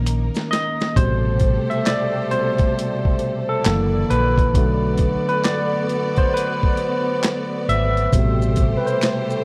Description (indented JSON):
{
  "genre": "R&B, neo-soul",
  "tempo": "67 BPM",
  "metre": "4/4",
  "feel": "swing 64% on 16ths",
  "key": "A dorian",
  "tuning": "A4 = 442 Hz",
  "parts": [
    { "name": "barky tine electric piano", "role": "accompaniment", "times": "0.0-9.4 s", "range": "B2 to E5", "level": "-23 LUFS", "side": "equal", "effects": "overdrive, analog chorus" },
    { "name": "clear studio string section", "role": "sustained chords", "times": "0.0-9.4 s", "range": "F#3 to D5", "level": "-31 LUFS", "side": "equal", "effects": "none" },
    { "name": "hollow-body short-scale fingered electric bass", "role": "bass", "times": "0.0-8.7 s", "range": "F#1 to B1", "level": "-23 LUFS", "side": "equal", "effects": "none" },
    { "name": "boom bap sampler-style drum kit", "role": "drums", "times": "0.1-9.3 s", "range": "handclaps, hi-hat, kick drum, snare drum", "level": "-23 LUFS", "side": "equal", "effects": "none" },
    { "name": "finger snaps and maracas", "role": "percussion", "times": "0.1-1.0, 8.1-9.4 s", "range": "none", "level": "-40 LUFS", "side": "equal", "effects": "none" }
  ],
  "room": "small room reverb",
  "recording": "dry, close 1970s-style studio recording",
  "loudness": "-20 LUFS",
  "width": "mono",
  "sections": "1.0-9.4 A section",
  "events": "drum fill 0.1-1.0; tine electric piano solo 1.0-9.4",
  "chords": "0.0 Bmaj9 (rootless); 1.0 Am9; 3.6 F#7alt; 4.5 Bm7; 8.1 Am9",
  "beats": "0.07 | 0.96 1.86 2.75 3.65 | 4.54 5.44 6.34 7.23 | 8.13 9.02"
}